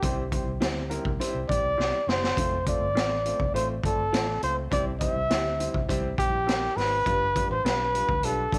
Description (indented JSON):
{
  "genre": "uptempo 1960s-style soul",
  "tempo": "102 BPM",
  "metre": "4/4",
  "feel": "straight",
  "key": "unclear",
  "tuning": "A4 = 437 Hz",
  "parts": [
    { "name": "breathy trumpet", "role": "melody", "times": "0.0-8.6 s", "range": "G4 to E5", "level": "-29 LUFS", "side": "equal", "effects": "none" },
    { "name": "warm upright piano", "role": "accompaniment", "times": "0.0-8.6 s", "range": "G3 to D5", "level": "-36 LUFS", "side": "equal", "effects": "none" },
    { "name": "vintage muted fingered electric bass", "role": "bass", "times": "0.0-8.6 s", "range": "F1 to D2", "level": "-35 LUFS", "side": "equal", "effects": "none" },
    { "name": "raw garage drum kit", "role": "drums", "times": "0.0-8.6 s", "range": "hi-hat, kick drum, snare drum", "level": "-32 LUFS", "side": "equal", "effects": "none" },
    { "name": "electric guitar through a small old amp", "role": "stabs", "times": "0.6-7.8 s", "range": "D4 to C5", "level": "-41 LUFS", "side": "equal", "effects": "none" }
  ],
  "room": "light reverb, studio reverb",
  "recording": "none",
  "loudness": "-26 LUFS",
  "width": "mono",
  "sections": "0.0-8.6 A section",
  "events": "drum fill 1.8-2.4",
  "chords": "0.0 C; 2.4 F; 4.7 C; 7.1 G7",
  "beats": "| 0.03 0.61 1.20 1.78 | 2.37 2.96 3.54 4.13 | 4.71 5.30 5.88 6.47 | 7.06 7.64 8.23"
}